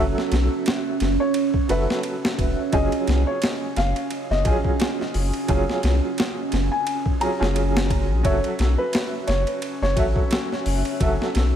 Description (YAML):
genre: trip hop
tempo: 87 BPM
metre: 4/4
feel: swing 56% on 16ths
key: unclear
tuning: A4 = 440 Hz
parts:
  - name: bright upright piano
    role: accompaniment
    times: 0.0-11.6 s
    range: F#3 to E5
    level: -27 LUFS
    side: right 1 dB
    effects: tremolo, tape echo
  - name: deep dark ambient pad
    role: sustained chords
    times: 0.0-11.6 s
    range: C#4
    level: -28 LUFS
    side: right 4 dB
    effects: chorus, built-in reverb
  - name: round analog bass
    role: bass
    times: 0.0-11.5 s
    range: E1 to B#1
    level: -22 LUFS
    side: left 1 dB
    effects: none
  - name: boom bap sampler-style drum kit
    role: drums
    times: 0.2-11.5 s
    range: hi-hat, kick drum, ride cymbal, snare drum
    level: -25 LUFS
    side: left 1 dB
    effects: overdrive
  - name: felt-muted upright piano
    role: melody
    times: 1.2-10.4 s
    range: B4 to A#5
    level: -28 LUFS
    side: left 1 dB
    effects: dub echo
room: little or no reverb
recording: none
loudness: -20 LUFS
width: side -9 dB against mid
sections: 0.0-11.6 A section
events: none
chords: 0.0 F#m7; 2.7 C#/F#; 8.2 F#m7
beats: 0.66 1.35 2.04 | 2.73 3.42 4.11 4.80 | 5.49 6.18 6.87 7.55 | 8.24 8.93 9.62 10.31 | 11.00